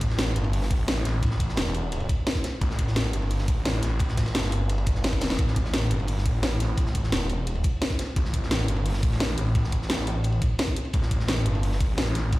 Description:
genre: dark technical drum and bass.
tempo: 173 BPM.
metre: 4/4.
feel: straight.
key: unclear.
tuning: A4 = 440 Hz.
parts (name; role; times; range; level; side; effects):
snarling distorted saw bass; bass; 0.0-12.4 s; E1 to A1; -25 LUFS; equal; distortion, tube saturation, sidechain pumping.
crunchy breakbeat drum kit; drums; 0.0-12.4 s; hi-hat, ride cymbal, snare drum; -38 LUFS; equal; high-pass filter on cymbals, high-pass filter on hats, high-pass filter on snare, high-pass filter on room.
drum and bass drum kit; drums; 0.0-12.4 s; hi-hat, snare drum; -28 LUFS; equal; none.
electronic kick drum; drums; 0.0-12.4 s; none; -25 LUFS; equal; none.
room: small room reverb.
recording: played on a big sound system in a bare room, large studio reverb.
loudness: -23 LUFS.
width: side -18 dB against mid.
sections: 0.0-12.4 A section.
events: drum fill 5.1.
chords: none.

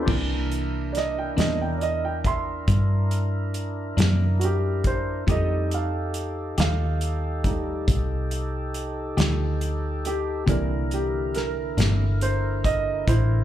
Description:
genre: slow blues.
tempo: 46 BPM (dotted quarters).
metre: 12/8.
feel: straight.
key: C mixolydian.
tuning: A4 = 440 Hz.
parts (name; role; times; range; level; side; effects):
warm concert grand piano; accompaniment; 0.0-13.4 s; E3 to C6; -28 LUFS; right 4 dB; slapback echo.
tonewheel organ; sustained chords; 0.0-13.4 s; D3 to D5; -32 LUFS; left 1 dB; slow rotary speaker.
vintage muted fingered electric bass; bass; 0.0-13.4 s; G1 to G2; -25 LUFS; equal; none.
clean electric guitar; accompaniment; 0.1-12.0 s; C3 to G4; -29 LUFS; left 8 dB; tremolo, slapback echo.
natural country drum kit; drums; 0.1-13.3 s; crash cymbal, hi-hat, kick drum, snare drum; -26 LUFS; equal; none.
room: small room ambience.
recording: live gig heard through the venue's PA, club reverb.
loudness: -22 LUFS.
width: side -12 dB against mid.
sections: 0.1-13.4 A section.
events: grand piano solo 0.1-13.4.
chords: 0.1 C9; 5.3 F9; 10.5 C9.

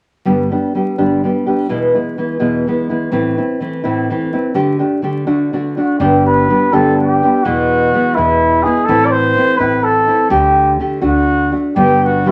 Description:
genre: mexican folk, mariachi.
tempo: 84 BPM (dotted quarters).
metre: 6/8.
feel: straight.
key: G major.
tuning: A4 = 436 Hz.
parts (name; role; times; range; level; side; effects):
nylon-string guitar; accompaniment; 0.3-12.3 s; E2 to G4; -16 LUFS; equal; none.
mellow trumpet; melody; 5.8-12.3 s; E4 to D5; -16 LUFS; equal; none.
upright bass; bass; 6.0-12.2 s; E1 to D2; -27 LUFS; equal; none.
room: wet club reverb, RT60 0.6 s.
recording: vinyl crackle.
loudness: -14 LUFS.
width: mono.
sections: 0.3-6.0 A section; 6.0-12.3 B section.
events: none.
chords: 0.3 G; 1.7 E; 3.1 Am; 4.6 Dsus4; 5.3 D; 6.0 G; 7.5 E; 8.9 Am; 10.3 Dsus4; 11.0 D; 11.8 G.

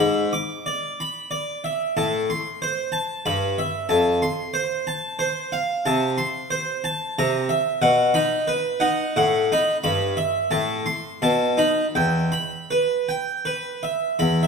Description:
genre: classical, baroque-style suite movement for harpsichord.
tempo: 78-94 BPM.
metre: 3/4.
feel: rubato.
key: E minor from 5.9 s.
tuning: A4 = 440 Hz.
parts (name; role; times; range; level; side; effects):
harpsichord; solo; 0.0-14.5 s; E2 to D6; -20 LUFS; equal; none.
room: moderate scoring stage reverb, RT60 1.6 s.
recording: minimal, uncompressed stereo recording.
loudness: -20 LUFS.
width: side -5 dB against mid.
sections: 0.0-14.2 A section.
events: none.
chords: 0.0 E7/G#; 2.0 Am; 3.3 Em/G; 3.9 F; 5.9 Am/C; 7.2 C7; 7.8 B; 9.2 B7/A; 9.8 Em/G; 10.5 Am; 11.2 B7; 12.0 Em.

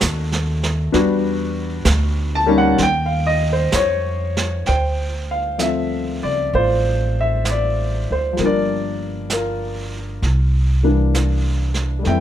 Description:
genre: jazz ballad.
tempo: 65 BPM.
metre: 4/4.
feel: swing 68% on 8ths.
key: D minor.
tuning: A4 = 440 Hz.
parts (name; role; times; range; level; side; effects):
warm grand piano; accompaniment; 0.0-12.2 s; E3 to A5; -19 LUFS; left 1 dB; none.
upright bass; bass; 0.0-12.2 s; G1 to F2; -20 LUFS; equal; none.
vintage brush drum kit; drums; 0.0-12.2 s; brushed snare drum, hi-hat, snare drum; -26 LUFS; right 4 dB; none.
room: little or no reverb.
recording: none.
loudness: -17 LUFS.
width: side -10 dB against mid.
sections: 0.0-4.7 A section; 4.7-12.2 B section.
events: none.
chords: 0.0 B7 (rootless); 0.9 Em9; 2.8 Ebsus2; 4.7 Dm7; 8.4 Gm7; 10.2 C9.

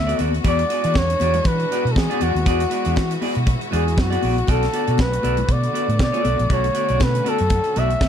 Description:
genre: disco.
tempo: 119 BPM.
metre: 4/4.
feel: swing 56% on 16ths.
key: B dorian.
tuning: A4 = 439 Hz.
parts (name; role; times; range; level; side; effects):
breathy flugelhorn; melody; 0.0-8.1 s; F#4 to E5; -23 LUFS; equal; none.
clear studio string section; sustained chords; 0.0-8.1 s; D3 to F#4; -28 LUFS; left 2 dB; none.
fingered electric bass; bass; 0.0-8.1 s; A#1 to E3; -22 LUFS; equal; none.
clean electric guitar; accompaniment; 0.1-8.1 s; B3 to D5; -25 LUFS; equal; none.
tight funk drum kit; drums; 0.1-8.1 s; hi-hat, kick drum, snare drum; -23 LUFS; equal; none.
congas; percussion; 0.2-8.1 s; none; -30 LUFS; left 5 dB; none.
room: little or no reverb.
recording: dark, warm production.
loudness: -17 LUFS.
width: side -9 dB against mid.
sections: 0.0-8.1 A section.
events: none.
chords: 0.4 E9; 4.5 Bm7.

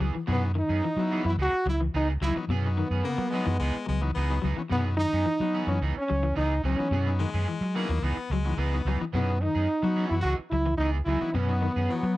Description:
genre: afrobeat.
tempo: 108 BPM.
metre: 4/4.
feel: straight.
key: unclear.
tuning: A4 = 440 Hz.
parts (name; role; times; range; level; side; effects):
electric guitar at the edge of break-up; arpeggios; 0.0-12.2 s; B2 to F#3; -33 LUFS; left 5 dB; tremolo.
electric guitar at the edge of break-up; stabs; 0.0-12.1 s; E3 to G#4; -37 LUFS; right 6 dB; lush chorus.
fingered electric bass; bass; 0.0-12.2 s; C#2 to F#3; -27 LUFS; equal; none.
clear trombone; melody; 0.3-12.2 s; B3 to F#4; -29 LUFS; right 1 dB; none.
bright trumpet; second line; 0.3-12.2 s; B3 to F#4; -38 LUFS; right 2 dB; none.
combo organ; accompaniment; 0.3-11.7 s; F#3 to F#4; -35 LUFS; left 4 dB; none.
edgy baritone saxophone; second line; 3.0-12.2 s; F#3 to B3; -35 LUFS; left 5 dB; none.
room: little or no reverb.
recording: dry, close 1970s-style studio recording.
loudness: -24 LUFS.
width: side -16 dB against mid.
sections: 0.0-12.2 A section.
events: none.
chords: 0.3 F#9sus4; 1.4 C#m9; 2.5 F#9sus4; 3.6 C#m9; 4.7 F#9sus4; 5.8 C#m9; 6.9 F#9sus4; 8.0 C#m9; 9.1 F#9sus4; 10.2 C#m9; 11.3 F#9sus4.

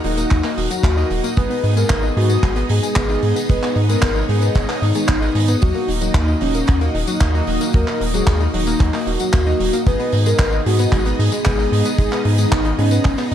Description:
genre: italo disco.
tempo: 113 BPM.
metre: 4/4.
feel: straight.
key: G# minor.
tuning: A4 = 440 Hz.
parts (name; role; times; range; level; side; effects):
soft octave-layered synth lead; melody; 0.0-13.3 s; C#4 to B4; -23 LUFS; left 1 dB; chorus, phaser, ping-pong delay.
string machine, full ensemble; sustained chords; 0.0-13.3 s; A#3 to F#5; -25 LUFS; equal; ensemble chorus.
analog pluck; arpeggios; 0.0-13.3 s; F#3 to D#4; -26 LUFS; left 4 dB; chorus, ping-pong delay.
chorused polysynth; stabs; 0.0-13.3 s; A#3 to D#5; -27 LUFS; right 4 dB; none.
round analog bass; bass; 0.0-13.3 s; D#1 to G#2; -19 LUFS; equal; tube saturation.
damped 70s drum kit; drums; 0.0-13.3 s; handclaps, hi-hat, tambourine; -26 LUFS; right 1 dB; none.
kick drum; drums; 0.3-13.2 s; none; -16 LUFS; equal; none.
room: light reverb, studio ambience.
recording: dark, warm production.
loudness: -15 LUFS.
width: side -10 dB against mid.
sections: 0.0-13.3 A section.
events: none.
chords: 0.0 D#m; 1.4 G#m; 5.6 D#m; 9.9 G#m.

